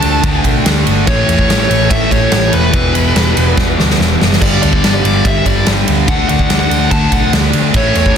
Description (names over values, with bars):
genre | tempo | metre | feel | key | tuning
hard rock | 144 BPM | 4/4 | straight | unclear | A4 = 440 Hz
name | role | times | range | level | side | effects
dark smooth lead guitar | melody | 0.0-8.2 s | B4 to A5 | -17 LUFS | left 1 dB | overdrive, slapback echo, plate reverb
heavy high-gain guitar | riff | 0.0-8.2 s | E2 to D4 | -20 LUFS | equal | distortion
overdriven electric guitar | riff | 0.0-8.2 s | E2 to D4 | -19 LUFS | right 11 dB | none
overdriven semi-hollow guitar | riff | 0.0-8.2 s | E2 to D4 | -19 LUFS | left 13 dB | none
hollow-body short-scale picked electric bass | bass | 0.0-8.1 s | E1 to D3 | -16 LUFS | equal | none
huge arena drum kit | drums | 0.0-8.2 s | crash cymbal, kick drum, ride cymbal, snare drum | -14 LUFS | equal | none
room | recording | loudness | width
light reverb, small room ambience | dense, heavily limited modern master | -9 LUFS | side -8 dB against mid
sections
0.0-8.2 A section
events
drum fill 3.6-4.4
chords
0.0 D5; 1.1 A5; 2.7 E5; 4.4 G5; 6.1 D5